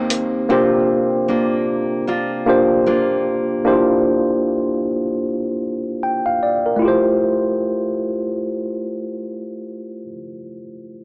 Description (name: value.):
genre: R&B.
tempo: 76 BPM.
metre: 4/4.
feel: swing 58% on 16ths.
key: F major.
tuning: A4 = 441 Hz.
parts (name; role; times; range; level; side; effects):
tine electric piano; accompaniment; 0.0-11.0 s; A3 to G5; -17 LUFS; equal; overdrive, fast stereo tremolo, cassette tape.
nylon-string guitar; arpeggios; 0.0-4.3 s; C3 to G4; -24 LUFS; equal; cassette tape, analog delay.
room: digital ambience.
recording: home recording on cassette, small speaker sound.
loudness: -16 LUFS.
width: side -30 dB against mid.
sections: 0.0-6.8 A section; 6.8-10.0 B section.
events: none.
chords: 0.5 C9sus4; 6.8 Fmaj9.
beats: | 0.50 1.29 2.08 2.86 | 3.65 4.44 5.23 6.02 | 6.81 7.60 8.39 9.18.